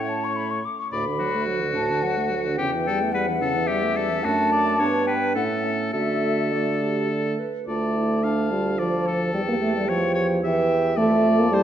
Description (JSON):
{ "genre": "quick classical-period movement for wind quintet", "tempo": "108 BPM", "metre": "3/4", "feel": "straight", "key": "D major, D minor from 7.7 s", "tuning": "A4 = 440 Hz", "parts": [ { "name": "silver concert flute", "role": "melody", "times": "0.0-11.6 s", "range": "D5 to D6", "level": "-27 LUFS", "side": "left 4 dB", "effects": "none" }, { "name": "bright oboe", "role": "second line", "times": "0.0-11.6 s", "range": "F#4 to F5", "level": "-28 LUFS", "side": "left 3 dB", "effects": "none" }, { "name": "mellow French horn", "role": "accompaniment", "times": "0.0-11.6 s", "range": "A2 to B3", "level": "-25 LUFS", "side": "right 1 dB", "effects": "none" }, { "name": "warm clarinet", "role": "accompaniment", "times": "0.0-11.6 s", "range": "C#4 to B4", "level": "-30 LUFS", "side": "right 6 dB", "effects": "none" }, { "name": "mellow bassoon", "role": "bass", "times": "0.0-11.6 s", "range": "D2 to D3", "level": "-28 LUFS", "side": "right 2 dB", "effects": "none" } ], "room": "wet recital hall reverb, RT60 1.5 s", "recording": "none", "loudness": "-20 LUFS", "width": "side -10 dB against mid", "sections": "0.0-7.7 A section; 7.7-11.6 B section", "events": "none", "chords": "0.0 A; 0.9 D; 2.6 A7/E; 4.2 D/F#; 4.8 G; 5.4 A; 5.9 D; 7.7 Dm; 9.3 A7/E; 11.0 Dm/F", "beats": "0.36 | 0.92 1.48 2.04 | 2.59 3.13 3.68 | 4.24 4.80 5.35 | 5.93 6.52 7.10 | 7.67 8.23 8.79 | 9.34 9.88 10.43 | 10.97 11.52" }